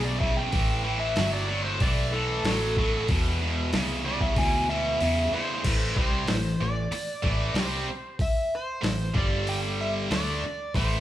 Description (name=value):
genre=blues rock power trio and southern rock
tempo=94 BPM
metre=4/4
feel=straight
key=A minor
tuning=A4 = 440 Hz
part: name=overdriven slide guitar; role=melody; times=0.0-11.0 s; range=A4 to G#5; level=-30 LUFS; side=equal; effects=none
part: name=tight distorted guitar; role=riff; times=0.0-11.0 s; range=E2 to D4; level=-28 LUFS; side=equal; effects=distortion
part: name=vintage muted fingered electric bass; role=bass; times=0.0-11.0 s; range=G1 to E2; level=-30 LUFS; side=equal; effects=none
part: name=boom bap sampler-style drum kit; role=drums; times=0.2-10.9 s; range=crash cymbal, hi-hat, kick drum, snare drum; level=-28 LUFS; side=equal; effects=none
room=moderate large studio reverb, RT60 1.2 s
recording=band playing live in one room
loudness=-24 LUFS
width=side -13 dB against mid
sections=0.0-5.6 A section; 5.6-11.0 B section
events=electric slide guitar solo 0.0-5.6; kick and snare drop out 5.0-5.6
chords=0.0 E7(no3); 0.5 Asus2; 3.1 E5; 5.6 Am; 9.2 G5; 10.1 Am